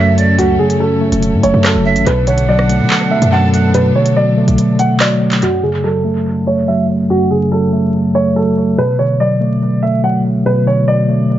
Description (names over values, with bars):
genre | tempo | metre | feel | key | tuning
hip hop, drill | 143 BPM | 4/4 | half-time | F# minor | A4 = 444 Hz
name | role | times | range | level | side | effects
dark baby grand piano | melody | 0.0-11.4 s | F#4 to F#5 | -17 LUFS | right 2 dB | low-pass filter, analog delay
breathy bright jazz flute | second line | 0.0-3.7 s | D5 to A5 | -21 LUFS | right 6 dB | analog delay
mellow tine electric piano | accompaniment | 0.0-11.4 s | F#2 to A3 | -13 LUFS | equal | medium stereo tremolo, low-pass filter, analog delay
dark chamber string section | sustained chords | 0.0-5.4 s | F#3 to A4 | -22 LUFS | left 1 dB | none
hard-hitting 808-style bass | bass | 0.0-4.6 s | E1 to B2 | -16 LUFS | equal | none
drill drum kit | drums | 0.2-5.5 s | handclaps, hi-hat, rim click | -20 LUFS | right 1 dB | analog delay
room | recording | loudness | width
light reverb, studio reverb | echo-heavy mix, vinyl crackle, nothing above 7.6 kHz | -11 LUFS | side -12 dB against mid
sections
0.0-5.4 A section; 5.4-11.4 B section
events
kick muted 4.6-5.4; filter sweep 5.4-11.4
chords
0.0 F#m; 2.1 Bm7; 5.4 F#m; 8.8 Bm7